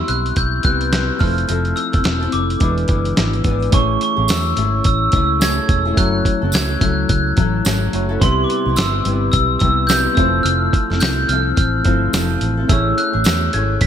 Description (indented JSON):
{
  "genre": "indie pop, bedroom pop",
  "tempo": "107 BPM",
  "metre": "4/4",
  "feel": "swing 60% on 16ths",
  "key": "unclear",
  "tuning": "A4 = 440 Hz",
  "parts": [
    { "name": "glockenspiel with soft plastic mallets", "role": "melody", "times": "0.0-13.9 s", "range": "C6 to B6", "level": "-20 LUFS", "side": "equal", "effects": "lush chorus, ping-pong delay" },
    { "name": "bell-like tine electric piano", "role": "accompaniment", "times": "0.0-13.9 s", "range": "G#3 to E5", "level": "-26 LUFS", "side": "right 5 dB", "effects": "medium stereo tremolo, cassette tape" },
    { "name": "nylon-string guitar", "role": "accompaniment", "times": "0.0-13.9 s", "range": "C3 to A4", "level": "-22 LUFS", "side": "left 6 dB", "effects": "analog chorus, vibrato effect" },
    { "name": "vintage muted fingered electric bass", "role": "bass", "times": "0.1-13.9 s", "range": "E1 to E2", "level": "-20 LUFS", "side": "equal", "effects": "none" },
    { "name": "dusty soul sampler-style drum kit", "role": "drums", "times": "0.1-13.9 s", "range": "hi-hat, kick drum, snare drum", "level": "-18 LUFS", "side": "equal", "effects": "overdrive, gated reverb" },
    { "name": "tambourine", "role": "percussion", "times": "4.3-13.4 s", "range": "none", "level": "-29 LUFS", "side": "right 10 dB", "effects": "none" }
  ],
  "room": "light reverb",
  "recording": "bright 1980s-style digital production",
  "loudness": "-14 LUFS",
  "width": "side -9 dB against mid",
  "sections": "0.0-3.7 A section; 3.7-13.9 B section",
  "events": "none",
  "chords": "0.0 Cmaj7; 1.2 Fmaj7; 2.6 E7; 3.7 Amaj7; 6.0 F#m7; 8.2 Cmaj7; 10.2 Fmaj7; 12.7 Amaj7",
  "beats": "0.37 0.93 | 1.49 2.05 2.61 3.17 | 3.73 4.29 4.85 5.41 | 5.97 6.54 7.09 7.66 | 8.21 8.78 9.34 9.89 | 10.45 11.01 11.57 12.13 | 12.69 13.25 13.81"
}